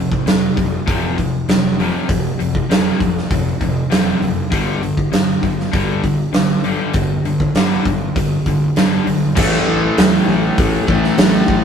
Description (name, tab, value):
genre	hard rock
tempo	99 BPM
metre	4/4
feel	straight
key	A minor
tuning	A4 = 440 Hz
part	cranked stack guitar	riff	0.0-11.6 s	F2 to A3	-20 LUFS	left 4 dB	overdrive
part	sludgy distorted guitar	riff	0.0-11.6 s	F2 to A3	-26 LUFS	right 6 dB	overdrive
part	fuzz fingered electric bass	bass	0.0-11.6 s	F1 to E2	-24 LUFS	equal	overdrive
part	huge arena drum kit	drums	0.1-11.6 s	crash cymbal, hi-hat, kick drum, snare drum	-16 LUFS	right 1 dB	none
part	crunchy overdriven guitar	riff	9.4-11.6 s	A2 to A3	-19 LUFS	equal	none
room	light reverb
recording	rough rehearsal-room recording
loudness	-14 LUFS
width	side -7 dB against mid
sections	0.0-9.4 A section; 9.4-11.6 B section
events	none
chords	0.0 F5; 4.5 G5; 9.4 A5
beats	0.27 0.87 1.48 | 2.09 2.69 3.30 3.91 | 4.51 5.12 5.73 6.34 | 6.94 7.55 8.16 8.76 | 9.37 9.98 10.58 11.19